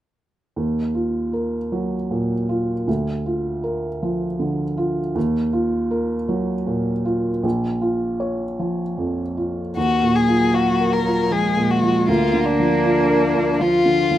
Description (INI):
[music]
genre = neoclassical piano and strings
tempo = 78 BPM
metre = 3/4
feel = rubato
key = Eb minor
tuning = A4 = 440 Hz
[part]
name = felt-muted upright piano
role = accompaniment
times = 0.6-14.2 s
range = Bb1 to F5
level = -20 LUFS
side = right 1 dB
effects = none
[part]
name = rich violin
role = melody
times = 9.8-14.2 s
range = D4 to Bb4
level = -20 LUFS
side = left 5 dB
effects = none
[part]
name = rich cello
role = second line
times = 10.2-14.2 s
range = F3 to Bb3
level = -22 LUFS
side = right 3 dB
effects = none
[sound]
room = wet studio reverb, RT60 0.5 s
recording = rough home demo mix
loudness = -18 LUFS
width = side -12 dB against mid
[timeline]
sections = 0.6-9.8 A section; 9.8-14.2 B section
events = none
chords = 0.6 Ebmadd9; 2.9 Bb/D; 5.2 Ebmadd9; 7.4 Bbm; 9.8 Ebmadd9; 12.1 Bb/D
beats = | 0.56 1.33 2.11 | 2.88 3.64 4.40 | 5.16 5.92 6.68 | 7.44 8.21 8.98 | 9.77 10.54 11.31 | 12.08 12.84 13.59